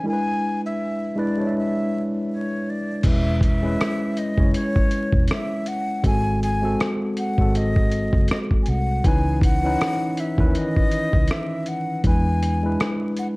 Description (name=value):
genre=lo-fi hip hop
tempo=80 BPM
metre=4/4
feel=swing 58% on 16ths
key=E major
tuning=A4 = 440 Hz
part: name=breathy jazz flute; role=melody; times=0.0-13.3 s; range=C#5 to G#5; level=-28 LUFS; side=equal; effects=low-pass filter
part: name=barky tine electric piano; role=accompaniment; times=0.0-13.4 s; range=D#3 to E5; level=-24 LUFS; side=equal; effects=medium stereo tremolo, low-pass filter
part: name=vintage muted fingered electric bass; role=bass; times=3.0-12.8 s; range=E1 to E2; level=-23 LUFS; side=equal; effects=none
part: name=dusty soul sampler-style drum kit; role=drums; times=3.0-13.4 s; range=crash cymbal, hi-hat, kick drum, rim click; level=-21 LUFS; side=equal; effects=none
room=light reverb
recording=vinyl crackle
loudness=-19 LUFS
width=side -25 dB against mid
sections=0.0-3.0 A section; 3.0-13.4 B section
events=filter sweep 0.0-3.0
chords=0.0 E7; 3.0 E6; 6.0 G#7b9; 9.0 C#m9; 12.0 E7